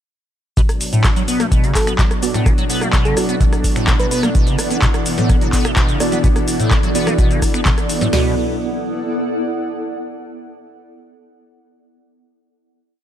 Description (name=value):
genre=acid house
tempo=127 BPM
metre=4/4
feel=straight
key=B minor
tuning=A4 = 440 Hz
part: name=lush unison pad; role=sustained chords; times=0.6-8.3 s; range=B2 to D4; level=-24 LUFS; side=equal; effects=chorus, sidechain pumping
part: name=liquid acid bass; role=riff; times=0.6-8.3 s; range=A2 to B3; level=-21 LUFS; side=equal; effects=phaser, ensemble chorus, cassette tape, ping-pong delay
part: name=booming analog drum machine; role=drums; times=0.6-8.2 s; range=crash cymbal, kick drum, snare drum, toms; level=-16 LUFS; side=equal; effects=overdrive
part: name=booming analog drum machine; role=drums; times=0.6-8.1 s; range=finger snaps, handclaps, hi-hat, rim click, shaker, snare drum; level=-22 LUFS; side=equal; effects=none
part: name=granular cloud pad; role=texture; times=2.1-10.0 s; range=B3 to F#5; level=-23 LUFS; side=equal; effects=built-in reverb, sidechain pumping
part: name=soft struck synth lead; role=melody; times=1.8-4.2 s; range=A4 to B4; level=-26 LUFS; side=equal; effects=chorus, tape echo
part: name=deep mellow chord stab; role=stabs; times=2.2-8.3 s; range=B3 to D5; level=-24 LUFS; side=right 5 dB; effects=chorus, ping-pong delay
room=light reverb, digital ambience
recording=none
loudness=-14 LUFS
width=side -10 dB against mid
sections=0.6-8.1 drop; 8.1-10.0 final chord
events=drop 0.6-8.1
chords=0.6 Bm